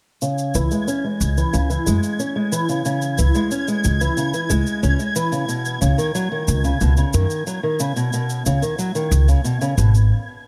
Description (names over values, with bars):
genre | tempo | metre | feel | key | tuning
folktronica | 91 BPM | 4/4 | straight | C# minor | A4 = 440 Hz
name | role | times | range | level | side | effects
fingerpicked old ladder-braced acoustic guitar | arpeggios | 0.2-9.9 s | B2 to C#4 | -24 LUFS | equal | low-pass filter, tape echo
shaker | drums | 0.2-10.1 s | none | -33 LUFS | equal | none
flickering grainy texture | texture | 0.5-10.1 s | G#6 | -32 LUFS | equal | built-in reverb
upright bass | bass | 0.5-10.1 s | G#1 to F#2 | -19 LUFS | equal | none
room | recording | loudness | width
light reverb | none | -20 LUFS | mono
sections
0.2-10.5 A section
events
filter sweep on steel-string acoustic guitar 0.2-10.5; stop 10.1-10.5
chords
0.2 C#m; 5.5 Badd9/C#